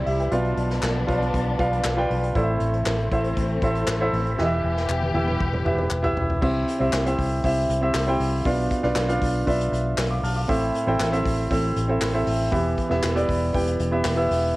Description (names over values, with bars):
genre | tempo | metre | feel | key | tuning
piano-driven pop | 118 BPM | 4/4 | straight | A minor | A4 = 443 Hz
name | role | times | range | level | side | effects
warm baby grand piano | accompaniment | 0.0-14.6 s | A2 to F6 | -23 LUFS | right 1 dB | cassette tape
warm studio string section | sustained chords | 0.0-6.4 s | C3 to G4 | -30 LUFS | left 2 dB | cassette tape
vintage muted fingered electric bass | bass | 0.1-14.5 s | E1 to C2 | -26 LUFS | equal | none
unplugged drum kit | drums | 0.1-14.4 s | crash cymbal, handclaps, hi-hat, kick drum, snare drum, toms | -30 LUFS | equal | cassette tape
group handclap | percussion | 0.8-14.2 s | none | -33 LUFS | left 4 dB | none
room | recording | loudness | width
moderate spring reverb, RT60 2.1 s | home recording on cassette | -20 LUFS | side -19 dB against mid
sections
0.0-6.4 A section; 6.4-14.6 B section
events
drum fill 4.4-6.4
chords
0.3 Bdim; 2.4 Am; 4.4 Em; 6.4 C; 8.5 Bdim; 10.5 Am; 12.5 Em